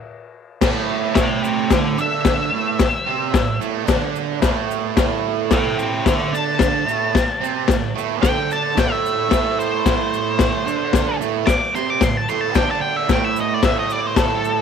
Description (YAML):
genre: garage rock duo or trio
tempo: 111 BPM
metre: 4/4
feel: straight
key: A minor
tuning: A4 = 440 Hz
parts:
  - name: fuzz guitar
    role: riff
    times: 0.6-14.6 s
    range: A2 to D4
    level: -22 LUFS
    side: right 13 dB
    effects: distortion
  - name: raw garage drum kit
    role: drums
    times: 0.6-14.3 s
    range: crash cymbal, kick drum, snare drum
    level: -20 LUFS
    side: left 4 dB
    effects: none
  - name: egg shaker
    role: percussion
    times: 0.6-14.6 s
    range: none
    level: -40 LUFS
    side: left 14 dB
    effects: none
  - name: octave-fuzz lead guitar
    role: melody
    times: 1.2-14.6 s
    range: G4 to D6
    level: -22 LUFS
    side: left 1 dB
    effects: distortion, tape echo
room: light reverb, studio ambience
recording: 1960s-style stereo with parts hard left and right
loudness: -17 LUFS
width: side -7 dB against mid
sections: 0.6-14.6 A section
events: stop 0.0-0.6; lead electric guitar solo 0.6-14.6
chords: 0.0 N.C.; 0.6 A5